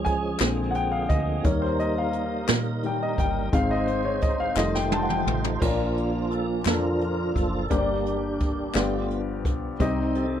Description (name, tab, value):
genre	slow gospel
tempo	58 BPM (dotted quarters)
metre	6/8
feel	straight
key	Bb major from 5.6 s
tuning	A4 = 440 Hz
part	warm upright piano	accompaniment	0.0-10.4 s	G2 to A5	-27 LUFS	left 4 dB	none
part	tonewheel organ	sustained chords	0.0-10.4 s	D3 to C5	-29 LUFS	right 4 dB	slow rotary speaker, overdrive, chorus vibrato
part	deep dub fingered electric bass	bass	0.0-10.4 s	F1 to Bb2	-30 LUFS	equal	none
part	jazz brush drum kit	drums	0.1-10.3 s	crash cymbal, hi-hat, kick drum, snare drum, toms	-27 LUFS	right 1 dB	none
part	group handclap	percussion	0.4-9.1 s	none	-32 LUFS	left 20 dB	none
part	warm French horn section	sustained chords	5.6-10.4 s	D3 to F4	-35 LUFS	left 2 dB	none
room	little or no reverb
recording	none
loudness	-22 LUFS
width	side -9 dB against mid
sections	0.0-5.6 A section; 5.6-10.4 B section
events	upright piano solo 0.0-5.6; drum fill 4.6-5.6; tonewheel organ solo 5.6-10.4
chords	0.4 Bb7; 1.4 Eb; 3.5 Ab; 4.6 F7; 5.6 Bb; 7.7 Gm; 8.8 G7; 9.8 Cm